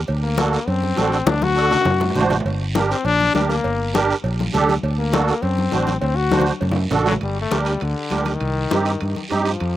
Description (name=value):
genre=latin, cumbia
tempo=202 BPM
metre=4/4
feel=straight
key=unclear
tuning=A4 = 441 Hz
part: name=fingered electric bass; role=bass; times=0.0-9.8 s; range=G1 to G2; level=-22 LUFS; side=equal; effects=none
part: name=congas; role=percussion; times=0.1-9.8 s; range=none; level=-24 LUFS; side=left 4 dB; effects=none
part: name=cowbell and timbales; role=percussion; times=0.1-9.8 s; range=none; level=-29 LUFS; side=right 5 dB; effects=slapback echo
part: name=guiro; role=percussion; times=0.1-9.8 s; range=none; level=-34 LUFS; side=right 4 dB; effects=none
part: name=bright trombone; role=second line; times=0.2-9.8 s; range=D3 to F#4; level=-22 LUFS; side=left 5 dB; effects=slapback echo
part: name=musette accordion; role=accompaniment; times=0.4-9.5 s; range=C4 to C5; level=-22 LUFS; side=right 5 dB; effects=slapback echo
room=little or no reverb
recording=recorded outdoors, with no room sound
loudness=-17 LUFS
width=side -13 dB against mid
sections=0.0-7.2 A section; 7.2-9.8 B section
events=trombone solo 0.0-7.2, 7.2-9.8; drum fill 1.3-2.5, 6.3-7.2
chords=0.1 D7; 2.5 Gm; 4.8 D7; 7.2 Gm; 8.4 Cm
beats=| 0.08 0.38 0.68 0.97 | 1.27 1.57 1.86 2.16 | 2.46 2.76 3.05 3.35 | 3.65 3.94 4.24 4.54 | 4.84 5.13 5.43 5.73 | 6.03 6.32 6.62 6.92 | 7.22 7.52 7.82 8.11 | 8.41 8.71 9.01 9.31 | 9.61